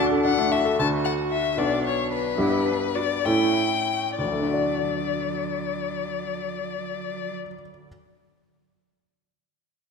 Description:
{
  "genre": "quick classical-period movement for piano trio",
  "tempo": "62-77 BPM (dotted quarters)",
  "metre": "6/8",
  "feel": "rubato",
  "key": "D major",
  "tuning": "A4 = 438 Hz",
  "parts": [
    { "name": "rich violin", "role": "melody", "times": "0.0-7.3 s", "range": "B4 to A5", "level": "-26 LUFS", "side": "left 9 dB", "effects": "none" },
    { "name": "rich cello", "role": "second line", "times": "0.0-7.3 s", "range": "F#3 to F#4", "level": "-31 LUFS", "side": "right 6 dB", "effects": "none" },
    { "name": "clear baby grand piano", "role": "accompaniment", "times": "0.0-7.9 s", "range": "B1 to D5", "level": "-25 LUFS", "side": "left 1 dB", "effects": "none" }
  ],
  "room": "wet concert hall reverb, RT60 1.8 s",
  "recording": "minimal, uncompressed stereo recording",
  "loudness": "-22 LUFS",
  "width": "side -5 dB against mid",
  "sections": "0.8-4.2 A section; 4.2-7.9 B section",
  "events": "slowing down 0.0-4.2",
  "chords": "0.0 D; 1.6 Bm; 2.4 G; 3.2 A7; 4.2 D"
}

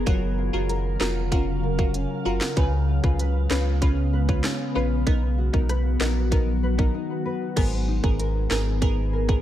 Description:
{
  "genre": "dancehall",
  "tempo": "96 BPM",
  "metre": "4/4",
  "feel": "straight",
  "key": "G# dorian",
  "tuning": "A4 = 440 Hz",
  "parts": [
    { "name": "wavetable chord stab", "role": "accompaniment", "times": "0.0-9.4 s", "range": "B3 to B4", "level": "-30 LUFS", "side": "equal", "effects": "sidechain pumping" },
    { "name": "glassy FM pad", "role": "sustained chords", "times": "0.0-9.4 s", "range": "C#3 to E#5", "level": "-30 LUFS", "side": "left 2 dB", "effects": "ensemble chorus, built-in reverb, sidechain pumping" },
    { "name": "nylon-string guitar", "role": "arpeggios", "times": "0.0-9.4 s", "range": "G#2 to B4", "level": "-31 LUFS", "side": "left 2 dB", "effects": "analog chorus, tape echo" },
    { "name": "warm sub bass", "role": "bass", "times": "0.0-9.4 s", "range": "E#1 to C#2", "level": "-24 LUFS", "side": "equal", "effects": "none" },
    { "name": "island pop drum kit", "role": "drums", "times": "0.1-9.4 s", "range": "crash cymbal, handclaps, hi-hat, kick drum, rim click, snare drum", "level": "-24 LUFS", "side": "equal", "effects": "none" }
  ],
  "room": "light reverb, digital ambience",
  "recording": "none",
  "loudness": "-21 LUFS",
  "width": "side -12 dB against mid",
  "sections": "0.0-7.6 A section; 7.6-9.4 A section",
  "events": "break 6.9-7.6",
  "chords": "0.1 F#maj7; 2.6 C#7; 5.1 Bmaj7; 7.6 G#madd9"
}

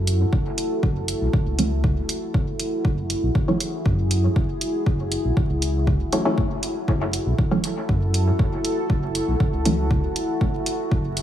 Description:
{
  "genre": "dub techno",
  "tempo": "119 BPM",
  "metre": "4/4",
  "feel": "straight",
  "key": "F# minor",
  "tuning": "A4 = 440 Hz",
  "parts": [
    { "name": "deep dark ambient pad", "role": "sustained chords", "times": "0.0-11.2 s", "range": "E4 to A4", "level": "-27 LUFS", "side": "equal", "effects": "chorus, built-in reverb, sidechain pumping" },
    { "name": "filtered dub chord stab", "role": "stabs", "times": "0.0-10.0 s", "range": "E3 to C#4", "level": "-26 LUFS", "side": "right 1 dB", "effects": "chorus, phaser, cassette tape, sidechain pumping, dub echo" },
    { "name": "round analog bass", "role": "bass", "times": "0.0-11.2 s", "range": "F#1 to F#2", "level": "-23 LUFS", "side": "equal", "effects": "tube saturation, sidechain pumping" },
    { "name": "electronic hi-hat", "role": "drums", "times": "0.1-11.2 s", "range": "none", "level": "-28 LUFS", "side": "right 1 dB", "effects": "none" },
    { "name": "electronic kick drum", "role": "drums", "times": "0.3-11.0 s", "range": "none", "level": "-23 LUFS", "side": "equal", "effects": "none" }
  ],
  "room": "light reverb",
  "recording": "vinyl crackle, studio ambience",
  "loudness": "-20 LUFS",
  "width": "side -11 dB against mid",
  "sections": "0.0-11.2 A section",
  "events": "filter sweep on synth stab 0.0-11.2",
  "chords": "0.0 F#m7"
}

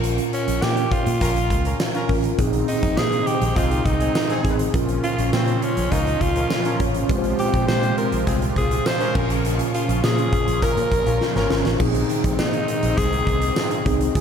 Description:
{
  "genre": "1980s-style pop",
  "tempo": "102 BPM",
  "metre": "4/4",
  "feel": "straight",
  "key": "Bb dorian",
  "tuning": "A4 = 440 Hz",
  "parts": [
    { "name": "raspy alto saxophone", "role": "melody", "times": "0.0-13.9 s", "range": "C4 to C5", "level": "-25 LUFS", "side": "equal", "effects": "ping-pong delay" },
    { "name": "mellow tine electric piano", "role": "accompaniment", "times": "0.0-14.2 s", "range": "Bb2 to Db5", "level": "-24 LUFS", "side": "right 1 dB", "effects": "medium stereo tremolo" },
    { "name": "vintage muted fingered electric bass", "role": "bass", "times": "0.0-14.2 s", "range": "Ab1 to Bb2", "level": "-24 LUFS", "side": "equal", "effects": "none" },
    { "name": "huge arena drum kit", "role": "drums", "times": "0.0-14.2 s", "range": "crash cymbal, hi-hat, kick drum, snare drum, tambourine", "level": "-24 LUFS", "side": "equal", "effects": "none" },
    { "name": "warm horn section", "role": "stabs", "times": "1.2-11.5 s", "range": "C4 to Bb4", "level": "-32 LUFS", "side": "left 2 dB", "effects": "none" },
    { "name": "brassy analog pad", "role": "sustained chords", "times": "2.4-14.2 s", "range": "Ab2 to G4", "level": "-28 LUFS", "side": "equal", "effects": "chorus" }
  ],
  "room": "moderate lush hall reverb, RT60 1.8 s, small room ambience",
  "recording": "dreamy mix soaked in reverb",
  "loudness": "-18 LUFS",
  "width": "side -7 dB against mid",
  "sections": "0.0-11.8 A section; 11.8-14.2 A section",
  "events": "drum fill 11.2-11.8",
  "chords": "0.0 Bbm; 2.4 Ab/Bb; 4.7 Bbm; 7.1 Fmadd9/Bb; 9.2 Bbm; 11.8 Ab/Bb"
}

